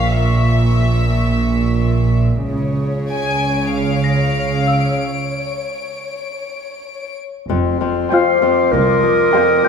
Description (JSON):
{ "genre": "cinematic, suspense film score", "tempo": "98 BPM", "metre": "4/4", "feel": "straight", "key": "unclear", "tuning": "A4 = 440 Hz", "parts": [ { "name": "warm symphonic violin section", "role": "melody", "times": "0.0-9.7 s", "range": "E5 to C6", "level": "-24 LUFS", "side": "left 3 dB", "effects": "none" }, { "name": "warm studio double bass section", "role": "bass", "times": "0.0-9.2 s", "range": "F1 to C#2", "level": "-19 LUFS", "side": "right 1 dB", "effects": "none" }, { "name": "warm symphonic cello section", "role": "bass", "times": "0.0-9.2 s", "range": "C2 to C#3", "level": "-19 LUFS", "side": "right 3 dB", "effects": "none" }, { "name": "small celesta", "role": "texture", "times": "0.0-9.7 s", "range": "E#5 to A#6", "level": "-25 LUFS", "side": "left 2 dB", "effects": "none" }, { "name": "warm symphonic violin section", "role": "texture", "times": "0.0-9.7 s", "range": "C#5 to D7", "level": "-26 LUFS", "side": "left 4 dB", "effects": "none" }, { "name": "Celtic harp", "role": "riff", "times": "7.5-9.7 s", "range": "F2 to F3", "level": "-18 LUFS", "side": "left 6 dB", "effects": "none" }, { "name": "clear clarinet", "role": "second line", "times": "8.1-9.7 s", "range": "Bb4 to C5", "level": "-14 LUFS", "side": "equal", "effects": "none" }, { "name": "dark chamber violin section", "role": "second line", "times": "8.1-9.7 s", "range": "G5", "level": "-26 LUFS", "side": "right 2 dB", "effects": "none" }, { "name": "dark symphonic viola section", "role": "accompaniment", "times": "8.1-9.7 s", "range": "F4", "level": "-21 LUFS", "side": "left 1 dB", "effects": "none" } ], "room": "wet scoring stage reverb, RT60 1.8 s", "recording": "minimal, uncompressed stereo recording", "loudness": "-14 LUFS", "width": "side -6 dB against mid", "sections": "0.0-7.5 A section; 7.5-9.7 B section", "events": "break 5.0-7.5", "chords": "0.0 Bbm; 2.5 C#6; 7.5 Fsus2" }